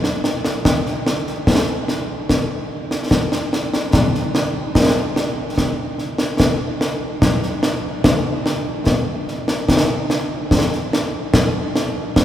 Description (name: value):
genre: scottish traditional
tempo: 73 BPM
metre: 2/4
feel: straight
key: none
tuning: none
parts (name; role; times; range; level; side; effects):
- concert snare drum and concert bass drum; drums; 0.0-12.2 s; none; -16 LUFS; equal; none
room: wet cathedral reverb, RT60 6.3 s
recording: recorded in a church or concert hall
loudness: -16 LUFS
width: side -11 dB against mid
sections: 0.0-3.9 A section; 3.9-12.2 B section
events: none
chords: none